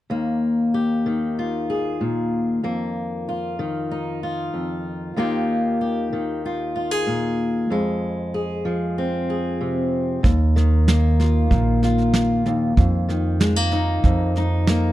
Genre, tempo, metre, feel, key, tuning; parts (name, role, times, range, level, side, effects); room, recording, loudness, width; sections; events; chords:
acoustic folk duo or small band; 95 BPM; 4/4; straight; Eb major; A4 = 440 Hz
fingerpicked steel-string acoustic guitar; accompaniment; 0.1-14.9 s; Eb2 to Ab4; -21 LUFS; left 1 dB
upright bass; bass; 10.2-14.9 s; Bb1 to F2; -19 LUFS; right 1 dB
soft brush drum kit; drums; 10.2-14.8 s; kick drum, snare drum; -21 LUFS; right 1 dB
little or no reverb; dark, warm production; -19 LUFS; side -14 dB against mid
0.1-10.2 A section; 10.2-14.9 B section
0.1 Ebadd9; 2.6 Bbsus4/F; 5.2 Ebadd9; 7.7 Fm; 10.2 Ebsus2; 12.8 Bbsus4/F